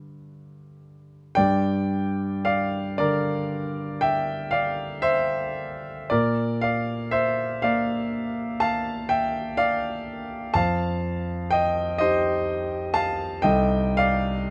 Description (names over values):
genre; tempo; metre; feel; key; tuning
classical, impressionist solo piano; 32-42 BPM (dotted quarters); 9/8; rubato; G minor; A4 = 440 Hz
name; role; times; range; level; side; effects
warm concert grand piano; solo; 0.0-14.5 s; C2 to A5; -25 LUFS; equal; none
room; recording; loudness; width
light reverb; none; -25 LUFS; mono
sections
0.0-1.4 A section; 1.4-14.5 B section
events
none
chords
0.0 G5; 1.4 Gm; 6.1 Bbadd9; 10.5 F9; 13.4 Cm6